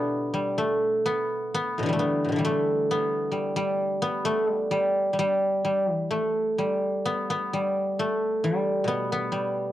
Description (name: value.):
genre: chinese traditional, Chinese solo plucked strings.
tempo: 65 BPM.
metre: 2/4.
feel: uneven beats, rubato.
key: G gong mode.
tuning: A4 = 439 Hz.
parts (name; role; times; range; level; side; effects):
guzheng; solo; 0.0-9.7 s; A2 to A5; -23 LUFS; equal; cassette tape.
room: light reverb.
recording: home recording on cassette.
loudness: -23 LUFS.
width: side -13 dB against mid.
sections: 0.0-9.7 A section.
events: none.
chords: none.